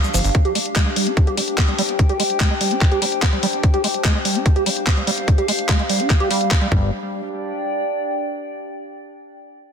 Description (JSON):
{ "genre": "psychedelic trance", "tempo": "146 BPM", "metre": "4/4", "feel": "straight", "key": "unclear", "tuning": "A4 = 440 Hz", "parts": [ { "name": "liquid acid bass", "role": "riff", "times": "0.0-6.9 s", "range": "F3 to G4", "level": "-24 LUFS", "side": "moving between left 2 dB and right 5 dB", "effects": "chorus, auto-pan, vintage 12-bit sampler grit, sidechain pumping, tape echo" }, { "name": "garage drum kit", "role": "drums", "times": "0.0-6.7 s", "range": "handclaps, hi-hat", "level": "-23 LUFS", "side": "left 2 dB", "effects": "none" }, { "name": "warbly tape-like pad", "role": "texture", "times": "0.0-8.5 s", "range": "D4 to G5", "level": "-24 LUFS", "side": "left 1 dB", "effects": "chorus, built-in reverb, sidechain pumping" }, { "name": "fat analog bass", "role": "bass", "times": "0.1-0.3, 6.7-6.9 s", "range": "G1", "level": "-20 LUFS", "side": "equal", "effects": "none" }, { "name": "electronic kick drum", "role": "drums", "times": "0.3-6.8 s", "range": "none", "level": "-16 LUFS", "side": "equal", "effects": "none" } ], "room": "light reverb, digital ambience", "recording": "dense, heavily limited modern master", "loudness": "-16 LUFS", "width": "side -7 dB against mid", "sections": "0.0-6.9 A section; 6.9-8.6 B section", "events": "filter sweep on acid bass 0.0-6.9", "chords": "0.0 G5", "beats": "| 0.35 0.76 1.17 1.58 | 1.99 2.40 2.81 3.22 | 3.63 4.05 4.46 4.87 | 5.28 5.69 6.10 6.51 | 6.92 7.33 7.74 8.15" }